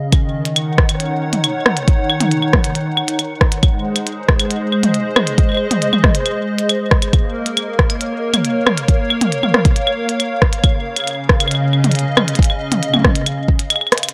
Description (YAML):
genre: IDM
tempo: 137 BPM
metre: 4/4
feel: straight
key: Eb dorian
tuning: A4 = 440 Hz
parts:
  - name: hollow soft pad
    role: sustained chords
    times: 0.0-14.1 s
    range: Db3 to Gb5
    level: -21 LUFS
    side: equal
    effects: ensemble chorus, sidechain pumping
  - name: electronic kick drum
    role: drums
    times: 0.1-13.6 s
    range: none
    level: -16 LUFS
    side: equal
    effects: none
  - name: glitchy drum kit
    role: drums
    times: 0.1-14.1 s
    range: claves, hi-hat, rim click, toms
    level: -19 LUFS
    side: equal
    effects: tape echo
room: little or no reverb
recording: dry, gritty hardware recording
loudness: -16 LUFS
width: mono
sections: 0.1-14.1 A section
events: drum fill 13.9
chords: 0.1 Ebm7; 3.6 Ab; 7.1 Bbm; 10.6 Dbadd9